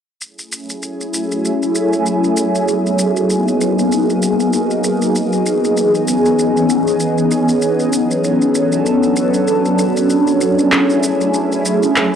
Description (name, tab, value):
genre	sunset chillout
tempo	97 BPM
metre	4/4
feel	swing 57% on 16ths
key	F# minor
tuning	A4 = 441 Hz
part	shimmering ambient pad	sustained chords	0.7-12.2 s	E3 to A4	-13 LUFS	equal	chorus, built-in reverb, phaser
part	electronic shaker and handclaps	drums	0.2-12.1 s	none	-22 LUFS	equal	small room ambience
room	moderate lush hall reverb, RT60 2.4 s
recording	dry, gritty hardware recording, cassette tape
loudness	-13 LUFS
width	side -8 dB against mid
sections	0.2-12.2 A section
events	none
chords	0.2 F#m9; 2.4 G#m9; 5.2 C#m9; 7.6 Bm9; 10.1 F#m9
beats	| 0.20 0.82 1.44 2.06 | 2.68 3.30 3.91 4.53 | 5.15 5.77 6.39 7.01 | 7.63 8.24 8.86 9.48 | 10.10 10.72 11.34 11.96